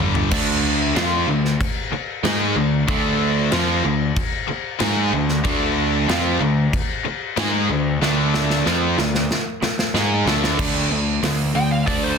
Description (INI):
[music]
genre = hard rock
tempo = 94 BPM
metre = 4/4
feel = straight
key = D minor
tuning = A4 = 436 Hz
[part]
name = overdriven semi-hollow guitar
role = riff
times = 0.0-12.2 s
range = G2 to G#4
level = -24 LUFS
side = right 11 dB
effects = none
[part]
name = tight distorted guitar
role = riff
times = 0.0-12.2 s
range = G2 to G#4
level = -24 LUFS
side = left 14 dB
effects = distortion
[part]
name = fuzz picked electric bass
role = bass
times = 0.0-12.2 s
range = G1 to G#2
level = -23 LUFS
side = equal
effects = overdrive
[part]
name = big rock drum kit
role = drums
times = 0.0-12.0 s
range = crash cymbal, hi-hat, kick drum, snare drum, toms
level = -23 LUFS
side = left 1 dB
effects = none
[part]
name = cranked stack guitar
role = riff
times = 0.3-10.6 s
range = D3 to G#4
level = -25 LUFS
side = left 1 dB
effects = overdrive, phaser
[part]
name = biting lead guitar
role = melody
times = 11.6-12.2 s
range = C5 to G5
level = -22 LUFS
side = right 2 dB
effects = overdrive, plate reverb
[sound]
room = light reverb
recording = dense, heavily limited modern master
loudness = -17 LUFS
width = side -6 dB against mid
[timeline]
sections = 0.3-10.6 A section; 10.6-12.2 B section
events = drum fill 0.0-0.3, 8.0-10.6; lead electric guitar solo 10.6-12.2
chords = 0.0 G5; 0.3 Dm; 10.6 D5